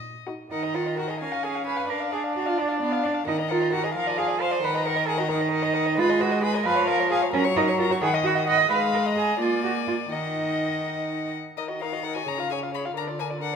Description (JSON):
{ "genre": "quick classical-period movement for string quartet", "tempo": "87 BPM (dotted quarters)", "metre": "6/8", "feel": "rubato", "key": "Eb minor", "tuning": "A4 = 443 Hz", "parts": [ { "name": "rich violin", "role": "melody", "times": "0.0-13.6 s", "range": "D5 to D#6", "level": "-33 LUFS", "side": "left 10 dB", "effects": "none" }, { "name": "rich cello", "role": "bass", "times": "0.0-13.6 s", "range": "Bb2 to D#5", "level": "-26 LUFS", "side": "right 5 dB", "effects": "none" }, { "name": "dark violin", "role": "second line", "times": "0.3-13.6 s", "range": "Gb4 to Ab5", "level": "-29 LUFS", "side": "left 5 dB", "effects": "none" }, { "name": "warm viola", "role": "accompaniment", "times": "0.3-13.6 s", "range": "Eb3 to Ab4", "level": "-29 LUFS", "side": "right 1 dB", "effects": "none" } ], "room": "moderate recital hall reverb, RT60 1.6 s", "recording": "minimal, uncompressed stereo recording", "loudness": "-22 LUFS", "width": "side -6 dB against mid", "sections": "0.5-11.6 A section; 11.6-13.6 A section", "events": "none", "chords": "0.0 Ebm; 1.2 Db; 1.9 Bb/D; 3.3 Ebm; 4.0 Ddim/F; 4.6 Ebm; 6.0 Abm; 6.7 Db/F; 7.3 Gb; 8.0 B/D#; 8.7 Fdim/Ab; 9.4 Bb7; 10.1 Ebm; 12.3 Db; 13.0 Bb/D", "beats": "| 0.52 1.21 | 1.90 2.59 | 3.27 3.95 | 4.63 5.30 | 5.98 6.66 | 7.33 8.02 | 8.70 9.40 | 10.12 10.84 | 11.57 12.27 | 12.96" }